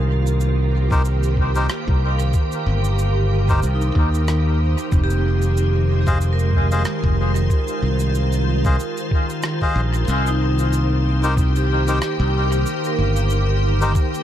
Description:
ambient dub; 93 BPM; 4/4; swing 56% on 16ths; A4 = 439 Hz
soft additive organ-like pad; sustained chords; 0.0-14.2 s; Eb3 to C5; -25 LUFS; equal; ensemble chorus, built-in reverb
vibraphone with medium hard mallets; arpeggios; 0.0-14.2 s; Eb4 to F5; -28 LUFS; right 4 dB; tape echo
modern bright fingered electric bass; bass; 0.0-13.9 s; F1 to Eb2; -18 LUFS; equal
wind-like tuned noise texture; texture; 0.0-10.1 s; C5; -39 LUFS; right 6 dB
cabasa and rim click; drums; 0.3-14.2 s; -32 LUFS; right 2 dB; dub echo
melodica; stabs; 0.9-13.9 s; Eb4 to F5; -27 LUFS; left 2 dB; dub echo
electronic kick drum; drums; 0.9-14.1 s; -19 LUFS; equal
light reverb, small room ambience; -17 LUFS; side -11 dB against mid
0.0-10.1 A section; 10.1-14.2 B section
0.0 Cm7; 4.9 Fm7; 10.1 Cm7
0.40 1.05 1.69 | 2.34 2.98 3.63 4.28 | 4.92 5.57 6.21 6.86 | 7.50 8.15 8.79 9.44 | 10.08 10.73 11.37 12.02 | 12.66 13.31 13.95

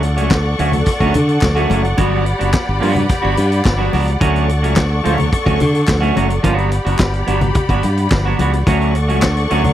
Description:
disco; 108 BPM; 4/4; straight; D major; A4 = 440 Hz
clean electric guitar; accompaniment; 0.0-9.7 s; F#3 to F#4; -20 LUFS; right 3 dB
rich studio string section; sustained chords; 0.0-9.7 s; G4 to C#6; -21 LUFS; left 1 dB
modern bright fingered electric bass; bass; 0.0-9.7 s; F#1 to D3; -16 LUFS; equal
vintage drum kit; drums; 0.0-9.7 s; handclaps, hi-hat, kick drum, snare drum; -19 LUFS; equal
congas; percussion; 0.3-9.7 s; -22 LUFS; left 3 dB
group handclap; percussion; 0.3-9.4 s; -29 LUFS; left 4 dB
little or no reverb; dry, close 1970s-style studio recording; -13 LUFS; side -12 dB against mid
0.0-9.7 A section
0.0 Dmaj7; 2.0 Gmaj7; 4.2 Dmaj7; 6.4 Gmaj7; 8.7 Dmaj7
0.31 0.87 1.42 | 1.98 2.54 3.10 3.65 | 4.21 4.77 5.32 5.88 | 6.44 7.00 7.55 8.11 | 8.67 9.23

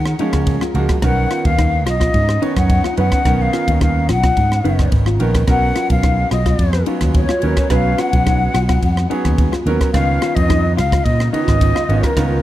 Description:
electric jazz fusion; 108 BPM; 4/4; straight; G# dorian; A4 = 441 Hz
mellow silver concert flute; melody; 0.0-12.4 s; A#4 to F#5; -22 LUFS; left 1 dB; tape echo
breathy mellow silver concert flute; second line; 0.0-12.4 s; A#4 to F#5; -26 LUFS; left 6 dB
muted studio string section; sustained chords; 0.0-12.4 s; C#3 to A#4; -29 LUFS; right 2 dB
fingered electric bass; bass; 0.0-12.4 s; F#1 to D#3; -17 LUFS; equal
crisp fusion drum kit; drums; 0.1-12.3 s; kick drum, ride cymbal, rim click; -19 LUFS; equal
bright baby grand piano; accompaniment; 0.2-12.4 s; D#3 to C#5; -22 LUFS; right 3 dB
clean electric guitar; stabs; 0.2-11.9 s; D#4 to E#4; -25 LUFS; left 5 dB; analog chorus
little or no reverb; dark, warm production; -13 LUFS; side -14 dB against mid
0.0-12.4 A section
0.0 F#maj9; 1.0 Bmaj9; 5.5 G#m11/B; 9.9 C#9
0.47 | 1.02 1.58 2.14 2.69 | 3.25 3.81 4.37 4.92 | 5.48 6.04 6.59 7.15 | 7.71 8.27 8.82 9.38 | 9.94 10.50 11.05 11.61 | 12.17

